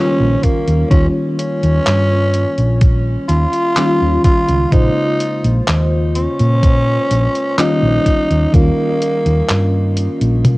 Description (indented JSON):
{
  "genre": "vaporwave",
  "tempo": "63 BPM",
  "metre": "4/4",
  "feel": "straight",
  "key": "unclear",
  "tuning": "A4 = 440 Hz",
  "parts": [
    { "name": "growling tenor saxophone", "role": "melody", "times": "0.0-10.4 s", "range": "Bb3 to F4", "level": "-18 LUFS", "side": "equal", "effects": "cassette tape, tape echo, plate reverb" },
    { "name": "FM electric piano with soft pad layer", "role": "accompaniment", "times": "0.0-10.6 s", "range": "Db3 to C5", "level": "-19 LUFS", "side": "equal", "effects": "tremolo, wide subtle chorus, vintage 12-bit sampler grit, plate reverb" },
    { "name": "hollow-body short-scale fingered electric bass", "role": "bass", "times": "0.2-10.4 s", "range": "Bb1 to Bb2", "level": "-15 LUFS", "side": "equal", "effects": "none" },
    { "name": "detuned 8-bit digital drum machine", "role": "drums", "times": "0.4-10.6 s", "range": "handclaps, hi-hat, toms", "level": "-18 LUFS", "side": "equal", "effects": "cassette tape" },
    { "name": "electronic kick drum", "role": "drums", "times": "0.4-8.7 s", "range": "none", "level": "-12 LUFS", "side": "equal", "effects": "cassette tape" }
  ],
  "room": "light reverb",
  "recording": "home recording on cassette",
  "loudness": "-12 LUFS",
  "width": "side -21 dB against mid",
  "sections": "0.0-10.6 A section",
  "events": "none",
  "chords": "0.4 Eb9; 4.7 Bbm7; 8.1 Eb9",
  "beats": "| 0.92 1.87 2.82 3.77 | 4.72 5.68 6.63 7.58 | 8.53 9.49 10.44"
}